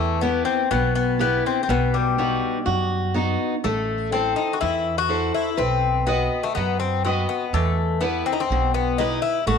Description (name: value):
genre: greek folk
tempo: 123 BPM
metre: 4/4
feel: straight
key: E harmonic minor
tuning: A4 = 441 Hz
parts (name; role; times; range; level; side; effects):
- Greek bouzouki; melody; 0.0-9.6 s; G3 to F#4; -23 LUFS; left 8 dB; none
- picked steel-string acoustic guitar; accompaniment; 0.0-9.6 s; B2 to D#5; -25 LUFS; equal; none
- upright bass; bass; 0.0-9.6 s; A1 to F#2; -26 LUFS; right 3 dB; none
room: moderate echo chamber reverb, RT60 1.9 s, small room reverb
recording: none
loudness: -20 LUFS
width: side -6 dB against mid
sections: 0.0-9.6 A section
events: none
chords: 0.0 Em; 1.7 B; 3.6 Am; 5.6 B; 7.5 Em